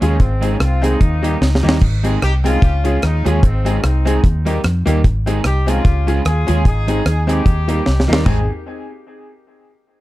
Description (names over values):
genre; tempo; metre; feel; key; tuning
ska; 149 BPM; 4/4; swing 57% on 8ths; Ab major; A4 = 441 Hz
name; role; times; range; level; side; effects
warm horn section; melody; 0.0-8.5 s; Ab3 to Ab4; -25 LUFS; left 2 dB; analog delay
electric guitar at the edge of break-up; accompaniment; 0.0-8.4 s; G3 to Ab4; -23 LUFS; right 6 dB; none
bright upright piano; stabs; 0.0-8.4 s; Bb3 to Ab4; -24 LUFS; left 4 dB; analog delay
vintage muted fingered electric bass; bass; 0.0-8.5 s; Ab1 to F2; -16 LUFS; equal; none
deep reggae drum kit; drums; 0.0-8.4 s; crash cymbal, hi-hat, kick drum, rim click, snare drum, toms; -16 LUFS; equal; none
room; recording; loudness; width
little or no reverb; dark, warm production; -13 LUFS; side -17 dB against mid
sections
0.0-1.8 A section; 1.8-8.3 B section; 8.3-9.9 C section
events
drum fill 1.4-1.8, 7.9-8.3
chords
0.2 Ab; 1.0 Eb; 1.8 Ab; 2.6 Db; 3.4 Ab; 4.2 Eb; 5.0 Ab; 5.8 Db; 6.7 Ab; 7.5 Eb; 8.3 Ab